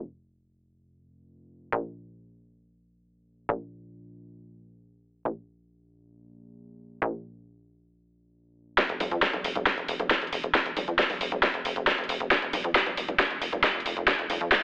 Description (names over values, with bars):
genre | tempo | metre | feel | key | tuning
uplifting trance | 136 BPM | 4/4 | straight | unclear | A4 = 440 Hz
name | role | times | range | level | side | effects
plucky analog bass | bass | 0.0-14.5 s | F1 to F2 | -32 LUFS | equal | sidechain pumping
big-room dance drum kit | drums | 8.8-14.6 s | congas, hi-hat, snare drum | -25 LUFS | equal | overdrive, high-pass filter on snare, studio reverb, high-pass filter on hats, high-pass filter on perc
electronic kick drum | drums | 8.8-14.6 s | none | -28 LUFS | equal | high-pass filter on kick, studio reverb, high-pass filter on room
room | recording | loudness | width
moderate digital room reverb, RT60 1.1 s | high-pass filter, telephone sound | -24 LUFS | side -22 dB against mid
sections
0.0-8.8 A section; 8.8-14.6 B section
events
build-up 8.8-14.6; drum fill 8.8-14.6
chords
none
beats
0.40 0.84 1.28 | 1.73 2.17 2.61 3.05 | 3.49 3.93 4.37 4.81 | 5.25 5.70 6.14 6.58 | 7.02 7.46 7.90 8.34 | 8.78 9.22 9.67 10.11 | 10.55 10.99 11.43 11.87 | 12.31 12.75 13.20 13.64 | 14.08 14.52